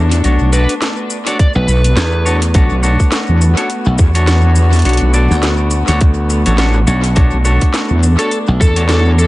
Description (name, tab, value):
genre	glitch hop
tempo	104 BPM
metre	4/4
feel	swing 57% on 16ths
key	B minor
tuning	A4 = 441 Hz
part	dark chamber string section	sustained chords	0.0-9.3 s	A3 to F#4	-22 LUFS	left 1 dB	sidechain pumping
part	clean electric guitar	stabs	0.0-9.3 s	D4 to D5	-20 LUFS	left 1 dB	sidechain pumping, tape echo
part	wobble bass	bass	0.0-9.3 s	A1 to E2	-11 LUFS	equal	chorus, tube saturation
part	drum and bass drum kit	drums	0.1-9.0 s	hi-hat, rim click, snare drum	-21 LUFS	equal	tape echo
part	maracas	percussion	0.1-9.3 s	none	-27 LUFS	left 3 dB	tape echo
part	biting lead guitar	melody	0.5-2.4, 8.2-9.3 s	A4 to D5	-20 LUFS	right 1 dB	overdrive, tape echo
part	electronic kick drum	drums	1.4-8.7 s	none	-10 LUFS	equal	none
part	slap bass	bass	1.6-8.6 s	B1 to E2	-13 LUFS	equal	none
room	light reverb, digital ambience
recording	echo-heavy mix, nothing above 10.4 kHz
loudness	-10 LUFS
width	side -18 dB against mid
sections	0.0-9.3 A section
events	none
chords	0.0 Bm9